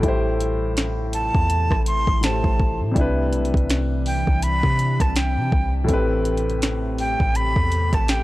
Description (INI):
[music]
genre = contemporary R&B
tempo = 82 BPM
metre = 4/4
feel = swing 58% on 16ths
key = unclear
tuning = A4 = 441 Hz
[part]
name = warm grand piano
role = accompaniment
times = 0.0-8.2 s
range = A2 to C5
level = -26 LUFS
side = left 2 dB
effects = none
[part]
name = deep dark ambient pad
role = sustained chords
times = 0.0-8.2 s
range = C3 to G4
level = -31 LUFS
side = left 1 dB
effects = chorus, built-in reverb
[part]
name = warm 808-style bass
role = bass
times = 0.0-8.2 s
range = A1 to C3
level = -23 LUFS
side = equal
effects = none
[part]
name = smooth R&B drum kit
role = drums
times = 0.0-8.2 s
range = hi-hat, kick drum, rim click, snare drum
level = -22 LUFS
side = equal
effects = overdrive
[part]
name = breathy bright jazz flute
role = melody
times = 1.1-8.2 s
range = G5 to C6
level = -26 LUFS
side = right 1 dB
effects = tape echo
[sound]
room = digital ambience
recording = dry, gritty hardware recording, cassette tape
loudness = -18 LUFS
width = side -17 dB against mid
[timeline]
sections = 0.0-8.2 A section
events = none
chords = 0.0 Am7; 3.0 Cmaj9; 5.9 Am9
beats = | 0.03 0.77 1.50 2.23 | 2.96 3.69 4.42 5.16 | 5.89 6.62 7.35 8.08